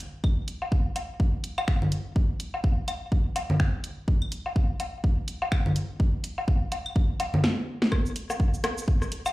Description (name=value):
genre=techno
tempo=125 BPM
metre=4/4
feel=swing 59% on 16ths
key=none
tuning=none
part: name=house drum kit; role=drums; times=0.0-9.3 s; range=finger snaps, hi-hat, shaker, snare drum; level=-30 LUFS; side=equal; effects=none
part: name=electronic kick drum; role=drums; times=0.2-9.0 s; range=none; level=-24 LUFS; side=equal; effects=none
part: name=electronic claves, woodblock, congas and rim click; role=percussion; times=0.2-9.3 s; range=none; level=-29 LUFS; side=left 1 dB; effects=overdrive, tape echo
room=moderate small room reverb, RT60 0.6 s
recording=played on a big sound system in a bare room, large studio reverb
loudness=-24 LUFS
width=side -19 dB against mid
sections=0.0-7.9 A section; 7.9-9.3 B section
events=drum fill 7.4-7.9; drop 7.9-9.3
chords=none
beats=| 0.24 0.72 1.20 1.68 | 2.16 2.64 3.12 3.60 | 4.08 4.56 5.04 5.52 | 6.00 6.48 6.96 7.44 | 7.92 8.40 8.88